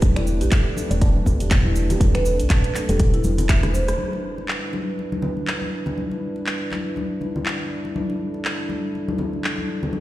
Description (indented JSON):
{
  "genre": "afro house",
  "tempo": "121 BPM",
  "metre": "4/4",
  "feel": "swing 57% on 16ths",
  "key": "E minor",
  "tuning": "A4 = 440 Hz",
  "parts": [
    { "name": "dark analog pad", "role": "sustained chords", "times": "0.0-10.0 s", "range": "G3 to B4", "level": "-29 LUFS", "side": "right 1 dB", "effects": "chorus, sidechain pumping" },
    { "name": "woody FM bass", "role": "bass", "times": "0.0-3.9 s", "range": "E1 to B1", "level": "-22 LUFS", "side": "equal", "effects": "tube saturation, sidechain pumping" },
    { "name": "afro-pop drum kit", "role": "drums", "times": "0.0-9.6 s", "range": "finger snaps, handclaps, hi-hat, rim click, toms", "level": "-28 LUFS", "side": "equal", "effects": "studio reverb" },
    { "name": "electronic kick drum", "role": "drums", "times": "0.0-3.6 s", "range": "none", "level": "-18 LUFS", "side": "equal", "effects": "studio reverb" },
    { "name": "congas", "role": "percussion", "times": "0.0-10.0 s", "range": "none", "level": "-28 LUFS", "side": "left 2 dB", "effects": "none" },
    { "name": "tube shaker", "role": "percussion", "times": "0.0-4.0 s", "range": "none", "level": "-39 LUFS", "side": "right 4 dB", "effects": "none" },
    { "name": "kalimba", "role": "melody", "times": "0.2-3.6 s", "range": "A4 to D5", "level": "-30 LUFS", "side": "right 2 dB", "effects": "low-pass filter, tape echo" },
    { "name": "marimba with soft mallets", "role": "arpeggios", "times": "0.2-3.9 s", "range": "E4 to A5", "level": "-29 LUFS", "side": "left 1 dB", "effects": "sidechain pumping, tape echo" }
  ],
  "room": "light reverb, small room ambience",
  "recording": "played on a big sound system in a bare room, large studio reverb",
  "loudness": "-20 LUFS",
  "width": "side -15 dB against mid",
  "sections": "0.0-4.0 A section; 4.0-10.0 B section",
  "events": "drum fill 3.5-4.0; band accent 3.9",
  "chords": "0.0 Amadd9/E; 4.0 Em7"
}